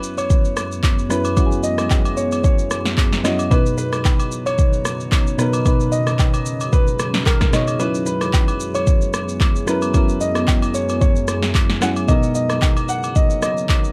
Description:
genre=amapiano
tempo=112 BPM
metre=4/4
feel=swing 55% on 16ths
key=B major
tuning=A4 = 440 Hz
part: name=warm concert grand piano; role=melody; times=0.0-13.9 s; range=A#4 to F#5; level=-27 LUFS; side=equal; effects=none
part: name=soft electric-piano-like synth keys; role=accompaniment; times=0.0-13.9 s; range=B2 to C#5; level=-26 LUFS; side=equal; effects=chorus
part: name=deep dark ambient pad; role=sustained chords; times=0.1-13.9 s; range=F#2 to A#5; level=-28 LUFS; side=equal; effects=chorus, built-in reverb, sidechain pumping
part: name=deep house drum kit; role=drums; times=0.0-13.9 s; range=handclaps, kick drum, rim click, shaker, snare drum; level=-20 LUFS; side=equal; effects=none
part: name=agogo bells and woodblock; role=percussion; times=0.2-13.8 s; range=none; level=-32 LUFS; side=equal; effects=none
room=digital ambience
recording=dark, warm production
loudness=-18 LUFS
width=mono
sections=0.0-13.9 A section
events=break 7.8-8.3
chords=0.0 F#7sus4; 3.5 Bmaj7; 7.8 F#7sus4; 12.1 Bmaj7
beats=0.30 0.84 | 1.37 1.91 2.44 2.98 | 3.52 4.05 4.59 5.12 | 5.66 6.19 6.73 7.26 | 7.80 8.34 8.87 9.41 | 9.94 10.48 11.02 11.55 | 12.09 12.62 13.16 13.69

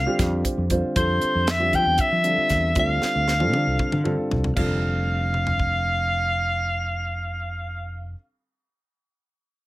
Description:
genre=electric jazz fusion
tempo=233 BPM (eighths)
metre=7/8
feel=straight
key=F major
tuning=A4 = 441 Hz
part: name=warm soprano saxophone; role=melody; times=0.0-8.1 s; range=C5 to G5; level=-23 LUFS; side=equal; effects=slapback echo
part: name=fretless electric bass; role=bass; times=0.0-8.1 s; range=F1 to F3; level=-25 LUFS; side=equal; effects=none
part: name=dark baby grand piano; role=accompaniment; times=0.1-8.1 s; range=D3 to C5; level=-27 LUFS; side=equal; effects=none
part: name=tight funk drum kit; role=drums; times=0.2-5.7 s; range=crash cymbal, hi-hat, kick drum, snare drum, toms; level=-27 LUFS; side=equal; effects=none
room=light reverb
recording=none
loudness=-20 LUFS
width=side -17 dB against mid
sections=1.0-4.6 A section; 4.6-8.2 B section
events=grand piano fill 0.2-1.0; drum fill 3.0-4.6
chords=0.0 Fsus2; 1.0 Fmaj9; 2.8 Dm7; 4.6 Fadd9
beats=0.19 0.45 0.70 | 0.96 1.22 1.47 1.73 1.99 2.24 2.50 | 2.76 3.02 3.27 3.53 3.79 4.05 4.30 | 4.56 4.82 5.08 5.33 5.59 5.85 6.11 | 6.37 6.62 6.88 7.14 7.40 7.66 7.92

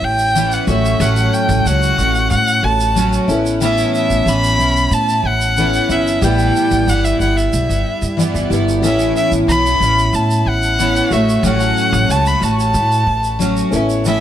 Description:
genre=acoustic pop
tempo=92 BPM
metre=4/4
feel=straight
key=A mixolydian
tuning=A4 = 440 Hz
part: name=warm violin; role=melody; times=0.0-14.2 s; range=E5 to B5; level=-17 LUFS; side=equal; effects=ping-pong delay
part: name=felt-muted upright piano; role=accompaniment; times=0.0-14.2 s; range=F#3 to E5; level=-26 LUFS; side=left 4 dB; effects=none
part: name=picked steel-string acoustic guitar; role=accompaniment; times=0.0-14.2 s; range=A2 to F#4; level=-18 LUFS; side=equal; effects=double-tracked left and right
part: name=upright bass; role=bass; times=0.0-14.2 s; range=G1 to A2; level=-18 LUFS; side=equal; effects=none
part: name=tube shaker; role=percussion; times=0.2-14.2 s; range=none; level=-29 LUFS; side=right 6 dB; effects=none
room=moderate studio reverb, RT60 0.7 s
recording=none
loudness=-13 LUFS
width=side -11 dB against mid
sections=0.0-14.2 A section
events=none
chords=0.0 Aadd9; 0.7 F#m/A; 3.3 Aadd9; 6.2 Em; 8.8 Aadd9; 11.1 F#m/A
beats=0.35 | 1.01 1.66 2.31 2.96 | 3.62 4.27 4.92 5.57 | 6.22 6.88 7.53 8.18 | 8.83 9.49 10.14 10.79 | 11.44 12.09 12.75 13.40 | 14.05

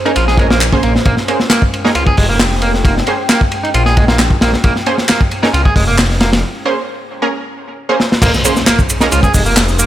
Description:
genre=breakbeat, breaks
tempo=134 BPM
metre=4/4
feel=straight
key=Bb dorian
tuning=A4 = 440 Hz
part: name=deep dark ambient pad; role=sustained chords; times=0.0-9.9 s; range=Ab3 to G5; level=-25 LUFS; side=equal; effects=chorus, built-in reverb, vintage 12-bit sampler grit, sidechain pumping
part: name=electric guitar at the edge of break-up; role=riff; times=0.1-9.9 s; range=Ab3 to Ab4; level=-18 LUFS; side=right 1 dB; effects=tube saturation, vintage 12-bit sampler grit, dub echo
part: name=orchestra-hit-like synth stab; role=stabs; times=0.1-9.1 s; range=Bb3 to C5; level=-19 LUFS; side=right 3 dB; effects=built-in reverb, dub echo
part: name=crunchy breakbeat drum kit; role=drums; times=0.1-9.9 s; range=crash cymbal, hi-hat, kick drum, ride cymbal, snare drum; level=-13 LUFS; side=equal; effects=none
part: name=phased detuned saw bass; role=bass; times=0.2-9.9 s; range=F1 to Db2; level=-15 LUFS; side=equal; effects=phaser
part: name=electronic handclaps and shaker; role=drums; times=0.6-9.9 s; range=none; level=-18 LUFS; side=equal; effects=none
part: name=impact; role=sound effects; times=8.3-9.9 s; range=none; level=-22 LUFS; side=equal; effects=none
room=light reverb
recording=none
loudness=-10 LUFS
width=side -12 dB against mid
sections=0.0-8.2 A section; 8.2-9.9 B section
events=break 6.4-8.2; drum fill 8.0; drop 8.2-9.9; impact 8.2-9.9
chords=0.0 Bbm9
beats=0.16 0.61 | 1.06 1.51 1.96 2.40 | 2.85 3.30 3.75 4.19 | 4.64 5.09 5.54 5.99 | 6.43 6.88 7.33 7.78 | 8.22 8.67 9.12 9.57

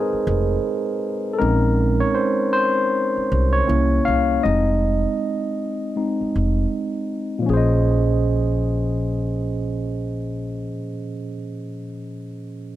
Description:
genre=R&B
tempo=79 BPM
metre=4/4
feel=swing 62% on 16ths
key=Bb minor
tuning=A4 = 440 Hz
part: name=barky tine electric piano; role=accompaniment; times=0.0-12.8 s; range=Bb2 to F5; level=-20 LUFS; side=moving between left 2 dB and right 4 dB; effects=overdrive, auto-pan
part: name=upright bass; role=bass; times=0.1-10.6 s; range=F1 to C2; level=-22 LUFS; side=equal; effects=none
room=light reverb, small room ambience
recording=none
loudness=-19 LUFS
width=side -14 dB against mid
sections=0.0-7.5 A section; 7.5-10.5 B section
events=tine electric piano solo 0.0-7.5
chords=0.0 Fm7; 1.4 Bbm11; 3.7 C7b9; 4.4 Fm7; 7.5 Bbm11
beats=0.63 | 1.39 2.15 2.91 3.67 | 4.43 5.19 5.95 6.71 | 7.46 8.22 8.98 9.74

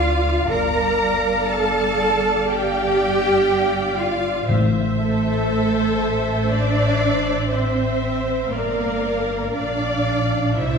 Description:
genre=cinematic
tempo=60 BPM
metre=4/4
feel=rubato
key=unclear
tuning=A4 = 438 Hz
part: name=rich symphonic violin section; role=melody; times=0.0-10.8 s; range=A4 to Bb5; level=-29 LUFS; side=left 2 dB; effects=none
part: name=dark symphonic violin section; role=second line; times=0.0-10.8 s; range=A4 to Bb5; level=-25 LUFS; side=left 1 dB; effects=none
part: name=rich symphonic viola section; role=accompaniment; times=0.0-10.8 s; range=C5 to F5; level=-26 LUFS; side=equal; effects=none
part: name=rich symphonic cello section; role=bass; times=0.0-10.8 s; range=A3 to Bb4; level=-22 LUFS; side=right 2 dB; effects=none
part: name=rich symphonic double bass section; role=bass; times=0.0-10.8 s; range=G1 to D2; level=-24 LUFS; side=equal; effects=none
part: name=timpani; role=percussion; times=4.5-6.0 s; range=A2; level=-24 LUFS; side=left 2 dB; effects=none
room=wet scoring stage reverb, RT60 1.9 s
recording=heard from further back in the room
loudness=-18 LUFS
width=side -5 dB against mid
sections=0.0-10.8 A section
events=none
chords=0.5 Gm7; 4.5 Am; 8.5 Gm7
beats=| 0.50 1.50 2.50 3.50 | 4.49 5.48 6.51 7.51 | 8.51 9.54 10.57

